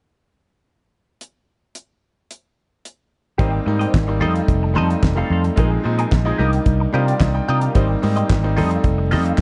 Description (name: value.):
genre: disco.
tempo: 110 BPM.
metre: 4/4.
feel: straight.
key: unclear.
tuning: A4 = 441 Hz.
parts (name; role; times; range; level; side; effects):
damped 70s drum kit; drums; 1.2-9.4 s; handclaps, hi-hat, kick drum, snare drum; -21 LUFS; equal; none.
bright grand piano; accompaniment; 3.4-9.4 s; F3 to G5; -24 LUFS; equal; none.
clean electric guitar; accompaniment; 3.4-9.3 s; F4 to F5; -29 LUFS; equal; wah, phaser.
fingered electric bass; bass; 3.4-9.4 s; F1 to C3; -22 LUFS; equal; none.
room: light reverb, studio reverb.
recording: dark, warm production, nothing above 11.0 kHz.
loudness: -18 LUFS.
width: mono.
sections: 1.2-3.4 A section; 3.4-9.4 B section.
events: grand piano fill 6.7-7.8.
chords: 1.2 N.C.; 3.4 Abmaj7; 4.2 F7; 5.6 Bb7sus4; 6.4 Cm7; 7.8 Abmaj7; 8.6 F7.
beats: | 1.21 1.75 2.30 2.85 | 3.39 3.94 4.49 5.03 | 5.58 6.12 6.67 7.21 | 7.76 8.30 8.85 9.39.